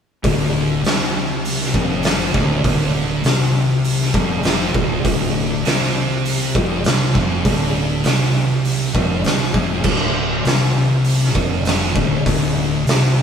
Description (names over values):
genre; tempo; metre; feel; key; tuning
stoner and doom metal; 100 BPM; 4/4; straight; D minor; A4 = 441 Hz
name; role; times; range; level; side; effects
thick fuzz guitar; riff; 0.2-13.2 s; D2 to C3; -22 LUFS; left 6 dB; distortion
thick fuzz guitar; riff; 0.2-13.2 s; D2 to C3; -21 LUFS; right 4 dB; distortion
fuzz fingered electric bass; bass; 0.2-13.2 s; D1 to C2; -27 LUFS; equal; overdrive
oversized low-tuned drum kit; drums; 0.2-13.0 s; crash cymbal, hi-hat, kick drum, snare drum; -18 LUFS; equal; none
room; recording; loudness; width
moderate studio reverb, RT60 0.5 s; band playing live in one room; -15 LUFS; side -7 dB against mid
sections
0.2-13.2 A section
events
none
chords
0.2 Dm